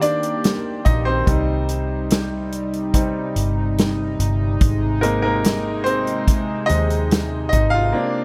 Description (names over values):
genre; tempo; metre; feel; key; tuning
pop ballad; 72 BPM; 4/4; straight; unclear; A4 = 440 Hz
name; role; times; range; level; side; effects
bright upright piano; accompaniment; 0.0-8.2 s; G3 to F5; -25 LUFS; equal; none
chorused pulse-width pad; sustained chords; 0.0-8.2 s; C3 to G4; -28 LUFS; equal; none
vintage muted fingered electric bass; bass; 0.0-7.9 s; G1 to Eb2; -25 LUFS; equal; none
natural country drum kit; drums; 0.0-7.7 s; hi-hat, kick drum, snare drum; -22 LUFS; equal; none
room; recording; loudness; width
little or no reverb; none; -20 LUFS; mono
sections
0.0-8.2 A section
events
upright piano solo 0.0-8.2; break 7.9-8.2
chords
0.0 Eb; 1.3 Cm; 4.6 Ab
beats
0.44 | 1.27 2.11 2.94 3.77 | 4.61 5.44 6.27 7.11 | 7.94